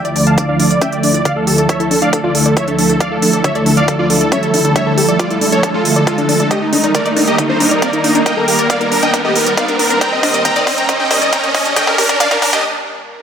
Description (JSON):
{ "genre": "uplifting trance", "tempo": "137 BPM", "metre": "4/4", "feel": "straight", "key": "unclear", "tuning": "A4 = 440 Hz", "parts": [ { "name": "supersaw chords", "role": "melody", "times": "0.0-12.6 s", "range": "Eb4 to Bb5", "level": "-16 LUFS", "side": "equal", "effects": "sidechain pumping, low-pass filter, digital delay" }, { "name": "analog string pad", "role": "sustained chords", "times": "0.0-13.2 s", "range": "D2 to Bb4", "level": "-17 LUFS", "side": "equal", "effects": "ensemble chorus, sidechain pumping" }, { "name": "wide unison pluck", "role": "arpeggios", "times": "0.0-12.6 s", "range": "D3 to D5", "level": "-21 LUFS", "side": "left 3 dB", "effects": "sidechain pumping, digital delay" }, { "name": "electronic hi-hat", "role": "drums", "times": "0.0-12.6 s", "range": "none", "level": "-19 LUFS", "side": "right 2 dB", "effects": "sidechain pumping on hats, high-pass filter on hats, high-pass filter on room" }, { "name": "riser", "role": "sound effects", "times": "2.1-12.6 s", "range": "none", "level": "-20 LUFS", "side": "right 2 dB", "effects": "none" }, { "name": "electronic kick drum", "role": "drums", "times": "0.4-12.6 s", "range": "none", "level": "-17 LUFS", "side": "equal", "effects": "high-pass filter on kick" } ], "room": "moderate digital room reverb, RT60 1.0 s", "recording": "high-pass filter", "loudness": "-11 LUFS", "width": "side -8 dB against mid", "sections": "0.0-13.2 A section", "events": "build-up 0.0-13.2; filter sweep on supersaw synth 0.0-13.2; filter sweep on synth pluck 0.0-13.2; filter sweep 0.0-13.2; riser 2.1-12.6; drum fill 6.5-12.6; break 12.6-13.2", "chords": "0.0 Dmadd9; 6.5 Eb", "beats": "0.38 0.81 | 1.25 1.69 2.13 2.57 | 3.00 3.44 3.88 4.32 | 4.76 5.20 5.63 6.07 | 6.51 6.95 7.38 7.82 | 8.26 8.70 9.14 9.57 | 10.01 10.45 10.89 11.33 | 11.76 12.20 12.64 13.08" }